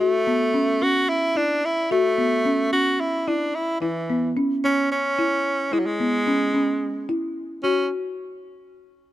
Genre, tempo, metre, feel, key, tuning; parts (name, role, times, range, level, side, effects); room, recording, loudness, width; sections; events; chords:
progressive instrumental, progressive; 220 BPM (eighths); 7/8; straight; A4 = 440 Hz
bright tenor saxophone; melody; 0.0-7.9 s; E3 to F#4; -22 LUFS; equal
folk marimba with soft mallets; arpeggios; 0.0-7.9 s; B3 to F#4; -23 LUFS; left 1 dB
light reverb; close, detailed microphones; -20 LUFS; side -14 dB against mid
0.0-7.6 A section; 7.6-9.1 B section
0.0 F#m7; 3.8 C#m7; 7.6 N.C.